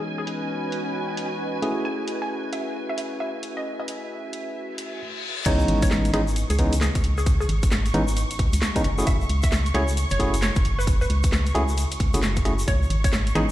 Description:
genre	UK garage, two-step garage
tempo	133 BPM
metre	4/4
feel	swing 62% on 16ths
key	C# minor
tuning	A4 = 440 Hz
part	hollow square pluck	melody	0.0-13.5 s	G#4 to G#5	-32 LUFS	equal	lush chorus, ping-pong delay
part	rich studio violin section	sustained chords	0.0-13.5 s	G#5 to C#6	-35 LUFS	right 2 dB	sidechain pumping
part	bright tine electric piano	stabs	0.0-13.4 s	E3 to G#4	-28 LUFS	equal	digital delay
part	granular cloud pad	texture	0.0-5.0 s	C#4 to E5	-32 LUFS	right 1 dB	built-in reverb, sidechain pumping
part	garage drum kit	drums	0.3-13.5 s	crash cymbal, finger snaps, hi-hat, snare drum	-29 LUFS	equal	none
part	reverse cymbal	sound effects	4.8-5.5 s	none	-32 LUFS	left 6 dB	none
part	organ-like FM bass	bass	5.5-13.5 s	F#1 to C#2	-23 LUFS	equal	none
part	electronic kick drum	drums	5.5-13.1 s	none	-22 LUFS	equal	none
part	egg shaker	percussion	5.5-13.5 s	none	-37 LUFS	left 3 dB	none
room	light reverb, digital ambience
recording	played on a big sound system in a bare room, stone room reverb, low-pass filter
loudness	-21 LUFS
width	side -14 dB against mid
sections	0.0-5.5 A section; 5.5-13.5 B section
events	filter sweep 0.0-5.5; reverse cymbal 4.8-5.5; drop 5.5-13.5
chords	0.0 C#m9; 1.6 F#m9; 5.5 C#m9; 8.8 F#m9; 12.7 C#5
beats	| 0.05 0.50 0.95 1.40 | 1.85 2.30 2.75 3.20 | 3.65 4.11 4.56 5.01 | 5.46 5.91 6.36 6.81 | 7.26 7.71 8.17 8.62 | 9.07 9.52 9.97 10.42 | 10.87 11.32 11.78 12.23 | 12.68 13.13

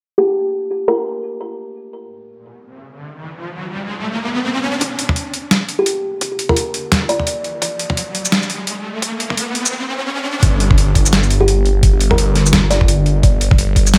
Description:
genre	half-time drum and bass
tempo	171 BPM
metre	4/4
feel	swing 59% on 16ths, half-time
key	G minor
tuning	A4 = 440 Hz
part	kalimba	melody	0.2-1.4, 5.8-7.6, 11.4-13.2 s	G4 to D5	-22 LUFS	equal	digital delay
part	riser	sound effects	3.0-10.4 s	none	-26 LUFS	equal	none
part	boom bap sampler-style drum kit	drums	4.8-14.0 s	hi-hat, shaker, snare drum, toms	-19 LUFS	equal	overdrive, studio reverb
part	electronic kick drum	drums	4.8-13.8 s	none	-16 LUFS	equal	overdrive, high-pass filter on kick, studio reverb
part	phased detuned saw bass	bass	10.4-14.0 s	G1	-17 LUFS	equal	phaser
room	light reverb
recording	high-pass filter, low-pass filter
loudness	-16 LUFS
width	mono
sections	0.0-4.8 A section; 4.8-10.4 B section; 10.4-14.0 C section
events	filter sweep 0.0-4.8; riser 3.0-4.8, 4.8-10.4; build-up 4.8-10.4; drop 10.4-14.0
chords	none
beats	0.25 | 0.60 0.95 1.30 1.65 | 2.00 2.36 2.71 3.06 | 3.41 3.76 4.11 4.46 | 4.81 5.16 5.51 5.87 | 6.21 6.57 6.92 7.27 | 7.62 7.97 8.32 8.67 | 9.02 9.37 9.72 10.07 | 10.43 10.78 11.13 11.48 | 11.83 12.18 12.53 12.88 | 13.23 13.58 13.94

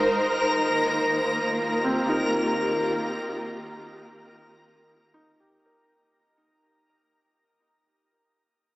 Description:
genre	ambient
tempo	73 BPM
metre	3/4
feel	straight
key	unclear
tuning	A4 = 439 Hz
part	warm symphonic string section	sustained chords	0.0-5.5 s	Eb3 to C5	-26 LUFS	equal	none
part	felt-muted upright piano	arpeggios	0.0-6.4 s	C4 to Bb4	-32 LUFS	equal	tape echo
part	muted symphonic double bass section	bass	0.0-5.5 s	Ab1 to Eb2	-55 LUFS	equal	none
part	backwards swelling texture	texture	0.0-5.6 s	Bb4 to Bb5	-26 LUFS	left 1 dB	built-in reverb
room	wet shimmer reverb, RT60 9.0 s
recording	small speaker sound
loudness	-22 LUFS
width	side -18 dB against mid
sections	0.0-5.5 A section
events	fade-out 0.0-5.5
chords	0.0 Ab; 0.6 Ebadd9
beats	| 0.62 1.43 2.24 | 3.06 3.88 4.71

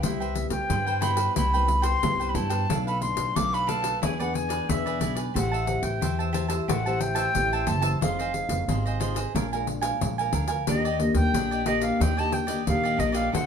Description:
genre	samba and choro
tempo	90 BPM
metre	4/4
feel	straight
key	unclear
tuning	A4 = 440 Hz
part	silver concert flute	melody	0.0-13.5 s	Eb5 to D6	-28 LUFS	equal	none
part	cavaquinho	accompaniment	0.0-13.5 s	D4 to A5	-32 LUFS	right 5 dB	none
part	nylon-string guitar	accompaniment	0.0-13.5 s	G2 to C5	-31 LUFS	left 3 dB	none
part	upright bass	bass	0.0-13.5 s	F1 to G2	-28 LUFS	equal	none
part	pandeiro	percussion	0.0-13.5 s	none	-31 LUFS	left 4 dB	none
room	wet studio reverb, RT60 0.5 s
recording	band playing live in one room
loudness	-23 LUFS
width	side -7 dB against mid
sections	0.0-13.5 A section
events	none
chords	0.0 Cmaj7; 2.7 Bm7b5; 4.0 E7; 5.4 Am7; 8.0 Fm7; 9.3 Bb7; 10.7 Ebmaj7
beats	| 0.03 0.70 1.36 2.03 | 2.69 3.36 4.03 4.69 | 5.36 6.02 6.69 7.35 | 8.02 8.68 9.35 10.01 | 10.68 11.34 12.01 12.67 | 13.34

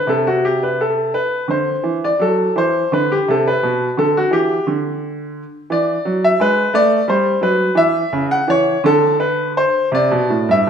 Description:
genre	classical, baroque-style suite movement for grand piano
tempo	57 BPM (dotted quarters)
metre	6/8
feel	rubato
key	unclear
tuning	A4 = 442 Hz
part	bright baby grand piano	solo	0.0-10.7 s	G2 to F#5	-14 LUFS	equal	none
room	wet recital hall reverb, RT60 1.3 s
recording	none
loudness	-14 LUFS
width	side -7 dB against mid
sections	0.0-10.7 A section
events	none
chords	0.0 N.C.; 1.5 D7; 3.6 Bm; 5.7 E7; 6.7 Gmaj9; 7.8 C#madd11; 8.8 N.C.; 9.9 C5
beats	0.42 | 1.49 2.55 | 3.60 4.64 | 5.70 6.74 | 7.78 8.84 | 9.93

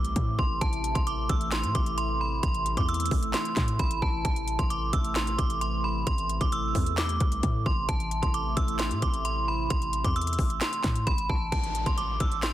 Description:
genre	hip hop, trap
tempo	132 BPM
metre	4/4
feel	half-time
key	A minor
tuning	A4 = 440 Hz
part	metallic FM bell	melody	0.0-12.5 s	A5 to E6	-30 LUFS	right 1 dB	chorus, digital delay
part	warm analog pad	sustained chords	0.0-11.5 s	C3 to E4	-36 LUFS	right 1 dB	chorus
part	warm 808-style bass	bass	0.0-12.5 s	A1 to A2	-30 LUFS	equal	none
part	trap drum kit	drums	0.0-12.5 s	handclaps, hi-hat, kick drum, snare drum	-28 LUFS	equal	none
part	downlifter	sound effects	11.5-12.5 s	none	-38 LUFS	equal	none
room	digital ambience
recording	dense, heavily limited modern master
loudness	-25 LUFS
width	side -13 dB against mid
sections	0.0-11.5 A section; 11.5-12.5 B section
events	none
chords	0.0 Am; 11.5 N.C.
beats	0.16 | 0.61 1.07 1.52 1.98 | 2.43 2.89 3.34 3.79 | 4.25 4.71 5.16 5.61 | 6.07 6.52 6.98 7.43 | 7.89 8.34 8.79 9.25 | 9.71 10.16 10.61 11.07 | 11.52 11.98 12.43

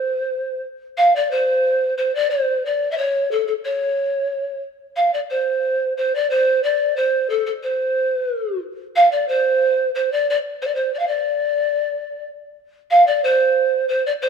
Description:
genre	andean folk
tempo	91 BPM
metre	3/4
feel	straight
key	unclear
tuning	A4 = 439 Hz
part	mellow hollow pan flute	solo	0.0-14.3 s	A4 to F5	-17 LUFS	equal	none
room	light reverb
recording	minimal, uncompressed stereo recording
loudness	-17 LUFS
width	side -6 dB against mid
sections	0.0-12.9 A section; 12.9-14.3 A section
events	none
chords	none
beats	0.33 | 0.99 1.66 2.32 | 2.99 3.65 4.31 | 4.97 5.64 6.30 | 6.96 7.62 8.29 | 8.95 9.61 10.27 | 10.93 11.59 12.25 | 12.91 13.57 14.23

